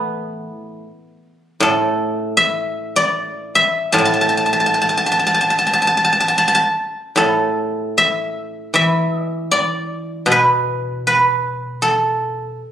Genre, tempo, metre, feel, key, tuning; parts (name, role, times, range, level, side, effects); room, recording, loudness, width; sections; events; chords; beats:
chinese traditional, Chinese solo plucked strings; 77 BPM; 4/4; rubato; A4 = 440 Hz
guzheng; solo; 0.0-12.7 s; A2 to A5; -15 LUFS; equal
moderate recital hall reverb, RT60 1.2 s; recorded on a phone in the room, club reverb; -15 LUFS; side -10 dB against mid
0.0-7.2 A section; 7.2-12.7 B section
0.07 | 0.83 1.60 2.38 3.17 | 3.95 4.73 5.53 6.35 | 7.17 7.96 8.74 9.51 | 10.28 11.04 11.80 12.57